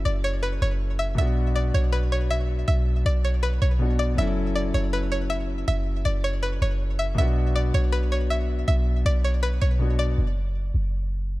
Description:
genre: hip hop, trap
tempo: 160 BPM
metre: 4/4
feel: half-time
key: B minor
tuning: A4 = 440 Hz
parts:
  - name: string-like resonator pluck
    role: melody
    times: 0.0-10.1 s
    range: B4 to E5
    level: -29 LUFS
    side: equal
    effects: chorus, digital delay
  - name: clear concert grand piano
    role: accompaniment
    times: 0.0-10.2 s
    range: B2 to A4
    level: -30 LUFS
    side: left 2 dB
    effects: none
  - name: clean 808-style bass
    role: bass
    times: 0.0-11.4 s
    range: F#1 to B1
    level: -23 LUFS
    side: equal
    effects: none
room: studio reverb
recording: dark, warm production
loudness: -21 LUFS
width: side -19 dB against mid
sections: 0.0-10.2 A section; 10.2-11.4 B section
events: break 10.2-11.4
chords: 0.0 F#m7; 1.2 Bm; 4.2 F#m7; 7.2 Bm; 10.2 N.C.

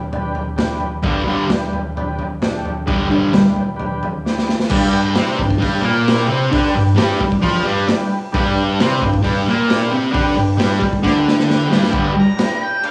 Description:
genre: garage rock duo or trio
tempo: 132 BPM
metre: 4/4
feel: straight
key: G major, G mixolydian from 4.7 s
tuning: A4 = 440 Hz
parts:
  - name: combo organ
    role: sustained chords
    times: 0.1-12.9 s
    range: D4 to B4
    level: -27 LUFS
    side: equal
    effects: subtle chorus, cassette tape
  - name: raw garage drum kit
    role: drums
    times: 0.1-12.9 s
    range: crash cymbal, hi-hat, kick drum, snare drum, toms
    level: -22 LUFS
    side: equal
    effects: cassette tape
  - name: thick fuzz guitar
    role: riff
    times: 1.0-12.1 s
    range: G2 to F4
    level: -18 LUFS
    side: equal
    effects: distortion, cassette tape
  - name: octave-fuzz lead guitar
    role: melody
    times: 12.2-12.9 s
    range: F5 to Bb5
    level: -23 LUFS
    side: equal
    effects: distortion, cassette tape, tape echo
room: light reverb, studio ambience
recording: home recording on cassette, studio reverb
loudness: -17 LUFS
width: mono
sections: 0.0-4.7 A section; 4.7-11.9 B section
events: drum fill 4.3-4.7, 11.0-11.9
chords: 0.0 G

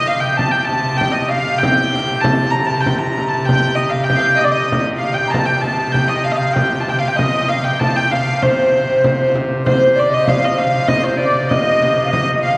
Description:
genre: medieval dance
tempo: 97 BPM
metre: 2/4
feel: straight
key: C dorian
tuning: A4 = 439 Hz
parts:
  - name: warm hurdy-gurdy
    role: melody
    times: 0.0-12.6 s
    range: C5 to Bb5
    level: -18 LUFS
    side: equal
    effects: none
  - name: pipe organ, clarinet reed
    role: drone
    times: 0.0-12.6 s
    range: C3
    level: -27 LUFS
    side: equal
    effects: none
  - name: frame drum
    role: percussion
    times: 0.4-12.4 s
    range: none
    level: -22 LUFS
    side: equal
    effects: none
  - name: bright tenor recorder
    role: second line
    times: 9.6-12.6 s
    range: C5 to F5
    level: -21 LUFS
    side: equal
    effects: none
room: wet cathedral reverb, RT60 4.9 s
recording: band playing live in one room, small room ambience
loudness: -16 LUFS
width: mono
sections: 0.0-9.6 A section; 9.6-12.6 A section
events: none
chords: none

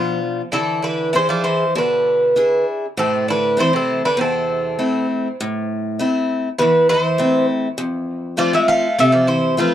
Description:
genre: greek folk, Greek bouzouki band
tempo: 100 BPM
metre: 4/4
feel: straight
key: A harmonic minor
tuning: A4 = 435 Hz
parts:
  - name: Greek bouzouki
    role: melody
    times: 0.0-9.7 s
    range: A4 to F5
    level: -17 LUFS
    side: equal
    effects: none
  - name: Greek bouzouki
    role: second line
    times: 0.0-9.7 s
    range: C3 to A3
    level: -23 LUFS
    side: right 3 dB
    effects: tape echo
  - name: picked acoustic archtop guitar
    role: accompaniment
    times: 0.0-9.7 s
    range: E2 to G#4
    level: -21 LUFS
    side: left 2 dB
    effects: none
room: light reverb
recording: dry, close 1970s-style studio recording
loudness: -16 LUFS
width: side -11 dB against mid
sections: 0.0-5.4 A section; 5.4-9.7 B section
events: speeding up 0.0-9.7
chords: 0.0 Bdim; 0.5 E7; 3.0 Am; 7.8 F

